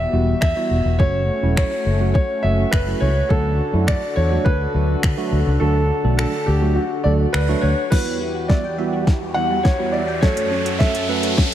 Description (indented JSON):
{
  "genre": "dance-pop",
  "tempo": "104 BPM",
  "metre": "4/4",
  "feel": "straight",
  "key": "E dorian",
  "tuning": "A4 = 436 Hz",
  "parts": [
    { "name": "warm concert grand piano", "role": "melody", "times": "0.0-11.1 s", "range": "F#4 to F#5", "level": "-23 LUFS", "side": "equal", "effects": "analog delay" },
    { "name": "warm analog pad", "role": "sustained chords", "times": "0.0-11.5 s", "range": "E2 to A4", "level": "-26 LUFS", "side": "left 2 dB", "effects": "chorus, sidechain pumping" },
    { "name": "vintage muted fingered electric bass", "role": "bass", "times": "0.0-7.7 s", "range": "E1 to D3", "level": "-19 LUFS", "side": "equal", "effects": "sidechain pumping" },
    { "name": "tine electric piano", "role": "accompaniment", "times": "0.1-11.4 s", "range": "F#3 to B4", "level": "-26 LUFS", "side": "right 6 dB", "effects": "analog chorus, sidechain pumping" },
    { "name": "smooth R&B drum kit", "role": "drums", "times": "0.4-11.5 s", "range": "crash cymbal, finger snaps, hi-hat, kick drum, snare drum", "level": "-20 LUFS", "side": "equal", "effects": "overdrive" },
    { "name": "glassy wavetable pluck", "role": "arpeggios", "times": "7.9-11.5 s", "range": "E3 to A5", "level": "-30 LUFS", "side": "left 2 dB", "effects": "chorus, sidechain pumping, analog delay" },
    { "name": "riser", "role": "sound effects", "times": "8.9-11.5 s", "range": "none", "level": "-27 LUFS", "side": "right 1 dB", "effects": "none" }
  ],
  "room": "moderate lush hall reverb, RT60 2.6 s",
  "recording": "dreamy mix soaked in reverb",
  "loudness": "-16 LUFS",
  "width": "side -11 dB against mid",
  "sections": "0.0-7.9 A section; 7.9-11.5 B section",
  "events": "kick muted 5.6-7.9; build-up 7.9-11.5; drum fill 7.9-11.5; riser 8.9-11.5",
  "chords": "0.0 Emadd9; 1.0 F#m; 3.3 D; 7.9 Emadd9; 10.2 F#m"
}